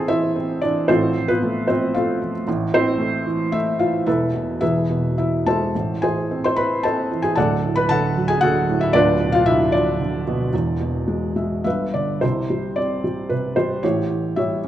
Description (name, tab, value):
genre	classical, lyrical solo piano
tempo	101-118 BPM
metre	3/4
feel	rubato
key	A harmonic minor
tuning	A4 = 439 Hz
part	felt-muted upright piano	solo	0.0-14.7 s	D1 to C6	-18 LUFS	equal	none
room	moderate recital hall reverb, RT60 1.4 s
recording	dark, warm production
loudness	-18 LUFS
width	side -12 dB against mid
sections	0.0-12.2 A section; 12.2-14.7 B section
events	felt piano fill 11.1-12.2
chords	0.0 Am; 0.9 F/A; 2.5 Am; 4.1 Esus4; 4.6 E; 5.7 Am; 7.4 D; 8.9 Bdim/D; 10.5 E; 11.7 G7; 12.2 Cadd9; 13.8 A7